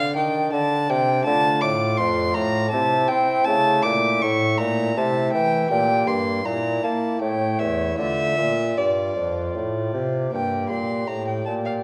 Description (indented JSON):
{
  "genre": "classical, baroque-style sonata movement with continuo",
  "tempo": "80 BPM",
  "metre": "3/4",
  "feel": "rubato",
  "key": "D minor",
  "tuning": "A4 = 438 Hz",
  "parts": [
    { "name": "warm violin", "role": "melody", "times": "0.0-11.7 s", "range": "D5 to D6", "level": "-25 LUFS", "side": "equal", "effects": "none" },
    { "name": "pipe organ, foundations", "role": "accompaniment", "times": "0.0-11.8 s", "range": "E2 to E5", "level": "-28 LUFS", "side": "equal", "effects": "none" },
    { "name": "clear bassoon", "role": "bass", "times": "0.0-11.8 s", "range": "E2 to C4", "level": "-26 LUFS", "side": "equal", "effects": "none" }
  ],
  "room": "wet recital hall reverb, RT60 1.3 s",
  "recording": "none",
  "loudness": "-22 LUFS",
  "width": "mono",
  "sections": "0.0-10.3 A section; 10.3-11.8 A section",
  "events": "none",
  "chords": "0.0 Bbmaj13 (rootless); 1.3 Dm; 2.7 C; 3.5 A; 5.0 Am/C; 5.7 Gm/Bb; 6.4 Bbmaj7#11; 7.2 A7; 8.0 Dm; 10.3 Gm"
}